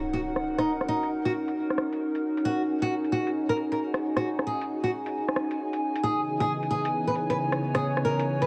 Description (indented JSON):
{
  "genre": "UK garage, two-step garage",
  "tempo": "134 BPM",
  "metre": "4/4",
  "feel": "swing 66% on 16ths",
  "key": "Eb phrygian",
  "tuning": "A4 = 440 Hz",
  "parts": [
    { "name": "soft string machine", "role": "sustained chords", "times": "0.0-8.5 s", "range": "Db3 to Bb4", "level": "-36 LUFS", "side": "equal", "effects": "ensemble chorus" },
    { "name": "impact", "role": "sound effects", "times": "0.0-0.7 s", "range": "none", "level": "-45 LUFS", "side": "equal", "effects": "none" },
    { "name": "warbly tape-like pad", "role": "texture", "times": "0.0-8.5 s", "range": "Fb3 to Ab5", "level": "-31 LUFS", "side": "equal", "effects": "chorus, built-in reverb" },
    { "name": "nylon-string guitar", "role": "melody", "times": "0.1-8.5 s", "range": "Eb4 to Cb5", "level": "-32 LUFS", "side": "equal", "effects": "tape echo" },
    { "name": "garage drum kit", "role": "drums", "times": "0.1-8.5 s", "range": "hi-hat, rim click", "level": "-33 LUFS", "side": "equal", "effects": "overdrive, low-pass filter on hats, soft clipping on snare, low-pass filter on snare, low-pass filter on cymbals" }
  ],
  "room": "moderate plate reverb, RT60 2.4 s",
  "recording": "dense, heavily limited modern master",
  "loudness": "-28 LUFS",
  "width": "mono",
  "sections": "0.0-8.5 A section",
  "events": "impact 0.0-0.7",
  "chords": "0.0 Ebm7; 6.0 Dbm7"
}